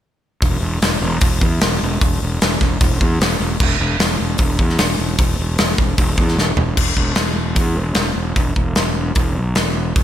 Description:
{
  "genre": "hard rock",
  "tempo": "151 BPM",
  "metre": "4/4",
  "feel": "straight",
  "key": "unclear",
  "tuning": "A4 = 440 Hz",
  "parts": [
    { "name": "fuzz fingered electric bass", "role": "bass", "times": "0.4-10.0 s", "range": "E1 to E2", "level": "-19 LUFS", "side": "equal", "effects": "overdrive" },
    { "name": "big rock drum kit", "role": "drums", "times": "0.4-10.0 s", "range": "crash cymbal, hi-hat, kick drum, snare drum, toms", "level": "-17 LUFS", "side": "equal", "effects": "none" }
  ],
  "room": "light reverb",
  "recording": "none",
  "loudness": "-15 LUFS",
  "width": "side -11 dB against mid",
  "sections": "0.4-6.8 A section; 6.8-10.0 B section",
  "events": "drum fill 6.4-6.8",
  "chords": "none"
}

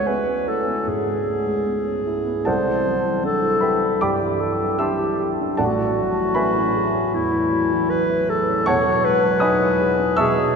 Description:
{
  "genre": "classical, impressionist duo for clarinet and grand piano",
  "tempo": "77 BPM",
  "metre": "4/4",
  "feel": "rubato",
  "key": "unclear",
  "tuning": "A4 = 440 Hz",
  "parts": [
    { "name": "mellow clarinet", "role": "melody", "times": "0.0-10.6 s", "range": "E4 to C#5", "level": "-20 LUFS", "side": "left 2 dB", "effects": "none" },
    { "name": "dark baby grand piano", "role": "accompaniment", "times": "0.0-10.6 s", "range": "E1 to E6", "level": "-21 LUFS", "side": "right 2 dB", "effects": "none" }
  ],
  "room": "wet cathedral reverb, RT60 4.2 s",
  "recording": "none",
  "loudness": "-18 LUFS",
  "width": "side -5 dB against mid",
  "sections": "0.0-10.6 A section",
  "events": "none",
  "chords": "0.0 C#m7; 2.5 Cadd9; 5.6 Amaj9; 8.7 Emaj9"
}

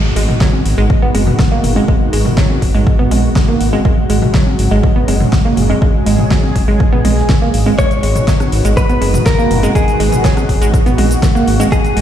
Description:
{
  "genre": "progressive house",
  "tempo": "122 BPM",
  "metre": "4/4",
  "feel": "straight",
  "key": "G# minor",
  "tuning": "A4 = 440 Hz",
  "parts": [
    { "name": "lush unison pad", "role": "sustained chords", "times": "0.0-12.0 s", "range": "C#3 to G#4", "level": "-20 LUFS", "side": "left 1 dB", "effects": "chorus, sidechain pumping" },
    { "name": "glassy wavetable pluck", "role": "arpeggios", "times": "0.2-12.0 s", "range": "F#3 to B3", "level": "-17 LUFS", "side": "right 3 dB", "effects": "chorus, sidechain pumping, ping-pong delay" },
    { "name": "round analog bass", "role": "bass", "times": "0.2-12.0 s", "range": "F#1 to A#1", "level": "-15 LUFS", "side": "equal", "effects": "sidechain pumping" },
    { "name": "deep house drum kit", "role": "drums", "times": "0.2-12.0 s", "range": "cabasa, hi-hat, rim click, snare drum", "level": "-22 LUFS", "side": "equal", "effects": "overdrive, sidechain pumping on hats, sidechain pumping on toms, sidechain pumping on perc" },
    { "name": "electronic toms and congas", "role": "percussion", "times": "0.3-11.7 s", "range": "none", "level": "-21 LUFS", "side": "left 1 dB", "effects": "sidechain pumping on perc, sidechain pumping on toms" },
    { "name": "electronic kick drum", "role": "drums", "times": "0.4-11.8 s", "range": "none", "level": "-14 LUFS", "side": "equal", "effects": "overdrive" },
    { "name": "direct-recorded clean electric guitar", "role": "melody", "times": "7.8-12.0 s", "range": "G#4 to C#5", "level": "-18 LUFS", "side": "left 2 dB", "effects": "ping-pong delay" }
  ],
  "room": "light reverb",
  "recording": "played on a big sound system in a bare room, stone room reverb",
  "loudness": "-10 LUFS",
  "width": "side -10 dB against mid",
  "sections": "0.0-12.0 A section",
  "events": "none",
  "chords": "0.0 G#m7; 3.9 F#sus2; 7.8 G#m7"
}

